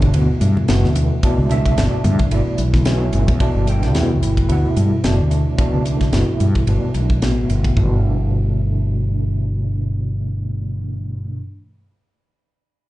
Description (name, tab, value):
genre	electric jazz fusion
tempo	110 BPM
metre	4/4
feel	swing 56% on 16ths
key	G lydian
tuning	A4 = 439 Hz
part	overdriven tine electric piano	accompaniment	0.0-11.4 s	B2 to G5	-21 LUFS	right 1 dB	medium tremolo, ensemble chorus
part	fretless electric bass	bass	0.0-11.4 s	F#1 to G2	-18 LUFS	equal	none
part	crisp fusion drum kit	drums	0.0-7.9 s	hi-hat, kick drum, ride cymbal, snare drum, toms	-21 LUFS	equal	none
part	congas	percussion	0.6-3.3 s	none	-26 LUFS	equal	none
room	little or no reverb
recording	live gig heard through the venue's PA, club reverb, nothing above 10.3 kHz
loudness	-15 LUFS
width	side -17 dB against mid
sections	0.0-7.8 A section; 7.8-12.1 B section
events	none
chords	0.0 Gadd9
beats	0.14 0.69 | 1.23 1.77 2.32 2.86 | 3.40 3.95 4.49 5.04 | 5.58 6.13 6.67 7.22 | 7.76 8.31 8.86 9.40 | 9.95 10.49 11.04